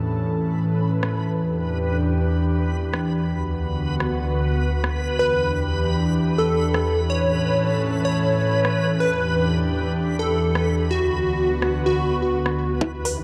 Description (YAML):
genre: progressive house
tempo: 126 BPM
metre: 4/4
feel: straight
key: E dorian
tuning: A4 = 440 Hz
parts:
  - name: airy breathy pad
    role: sustained chords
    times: 0.0-13.2 s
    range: D2 to A4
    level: -24 LUFS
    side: equal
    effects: chorus, sidechain pumping
  - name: backwards swelling texture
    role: texture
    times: 0.1-13.2 s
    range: B4 to B5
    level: -34 LUFS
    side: equal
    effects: built-in reverb, sidechain pumping
  - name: house drum kit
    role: drums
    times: 1.0-13.1 s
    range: hi-hat, rim click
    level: -32 LUFS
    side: equal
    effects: sidechain pumping on perc, sidechain pumping on hats, sidechain pumping on cymbals
  - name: plucky unison lead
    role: melody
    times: 5.2-12.7 s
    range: F#4 to C#5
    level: -25 LUFS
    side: equal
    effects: sidechain pumping, delay
  - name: tight sequenced synth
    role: arpeggios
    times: 12.8-13.2 s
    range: E4 to B4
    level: -30 LUFS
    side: equal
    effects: chorus, sidechain pumping, delay
  - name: electronic kick drum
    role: drums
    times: 12.8-12.9 s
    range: none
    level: -29 LUFS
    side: equal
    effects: high-pass filter on kick, high-pass filter on room
  - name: riser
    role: sound effects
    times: 12.8-13.2 s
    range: none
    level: barely audible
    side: none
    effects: none
room: moderate lush hall reverb, RT60 2.4 s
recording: dark, warm production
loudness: -22 LUFS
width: mono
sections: 0.0-12.8 A section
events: none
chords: 0.0 A; 1.4 Em7; 3.3 D6; 5.2 Em7; 7.1 A; 9.0 Em7; 10.9 D6